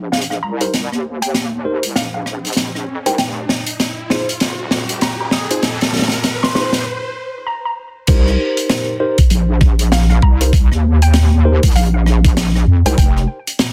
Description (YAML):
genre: glitch hop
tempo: 98 BPM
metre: 4/4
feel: swing 60% on 16ths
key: C minor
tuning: A4 = 440 Hz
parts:
  - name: wobble bass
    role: bass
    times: 0.0-13.3 s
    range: Eb1 to F2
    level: -18 LUFS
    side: equal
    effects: chorus, high-pass filter
  - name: riser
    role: sound effects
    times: 1.1-6.9 s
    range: none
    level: -30 LUFS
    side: equal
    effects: none
  - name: woody wave-folded pluck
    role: melody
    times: 0.1-13.1 s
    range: F5 to Eb6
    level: -27 LUFS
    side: equal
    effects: subtle chorus, cassette tape, delay
  - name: open jazz drum kit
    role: drums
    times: 0.1-13.7 s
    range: crash cymbal, hi-hat, rim click, snare drum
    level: -21 LUFS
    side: equal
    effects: none
  - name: mellow tine electric piano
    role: stabs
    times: 0.6-13.0 s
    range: Eb4 to C5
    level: -23 LUFS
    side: equal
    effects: sidechain pumping, delay
  - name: electronic kick drum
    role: drums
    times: 8.1-13.1 s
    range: none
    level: -14 LUFS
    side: equal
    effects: overdrive
room: light reverb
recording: dense, heavily limited modern master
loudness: -16 LUFS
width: mono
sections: 0.0-8.1 A section; 8.1-13.7 B section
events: build-up 0.0-8.1; drum fill 0.0-6.9; riser 1.1-6.9; break 6.9-8.1; drop 8.1-13.7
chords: 0.0 Cm7; 3.2 Fm7; 8.1 Cm7; 13.0 N.C.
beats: 0.12 | 0.73 1.35 1.96 2.57 | 3.18 3.79 4.41 5.02 | 5.63 6.24 6.86 7.47 | 8.08 8.69 9.30 9.92 | 10.53 11.14 11.75 12.37 | 12.98 13.59